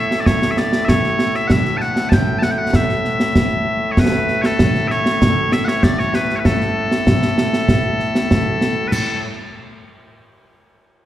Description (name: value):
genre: scottish traditional, Scottish pipe music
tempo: 97 BPM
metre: 4/4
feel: straight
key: A major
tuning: A4 = 441 Hz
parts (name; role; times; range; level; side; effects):
- loud bright bagpipes; melody; 0.0-9.2 s; A2 to A5; -18 LUFS; left 1 dB; none
- concert snare drum, concert bass drum and clash cymbals; drums; 0.1-9.1 s; none; -17 LUFS; right 1 dB; none
room: moderate concert hall reverb, RT60 2.0 s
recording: heard from further back in the room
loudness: -14 LUFS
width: side -12 dB against mid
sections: 0.0-8.9 A section; 8.9-11.1 B section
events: none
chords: none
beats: 0.26 0.88 | 1.50 2.12 2.74 3.36 | 3.98 4.59 5.21 5.83 | 6.45 7.07 7.69 8.30 | 8.92